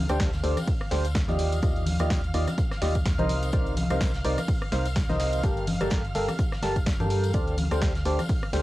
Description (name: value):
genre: piano house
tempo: 126 BPM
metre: 4/4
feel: swing 57% on 16ths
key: G minor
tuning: A4 = 439 Hz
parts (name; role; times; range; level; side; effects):
- rich studio violin section; sustained chords; 0.0-8.6 s; F5 to F6; -38 LUFS; equal; sidechain pumping, cassette tape
- organ-like FM bass; bass; 0.0-8.6 s; G1 to G2; -28 LUFS; equal; sidechain pumping
- percussive organ stab; riff; 0.1-8.6 s; C3 to A5; -29 LUFS; equal; wide subtle chorus, vintage 12-bit sampler grit, sidechain pumping, cassette tape, tape echo
- punchy analog drum machine; drums; 0.1-8.6 s; hi-hat, rim click, snare drum; -35 LUFS; equal; cassette tape
- tambourine and congas; percussion; 0.1-8.5 s; none; -34 LUFS; left 2 dB; none
- electronic kick drum; drums; 0.2-8.4 s; none; -27 LUFS; equal; cassette tape
- soft brush drum kit; drums; 0.2-8.6 s; hi-hat, snare drum; -45 LUFS; right 1 dB; none
room: light reverb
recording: home recording on cassette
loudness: -23 LUFS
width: side -16 dB against mid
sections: 0.0-8.6 A section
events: none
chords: 0.0 D7sus4; 1.4 Ebmaj9; 3.3 Cm9; 5.4 Gm9; 7.3 D7sus4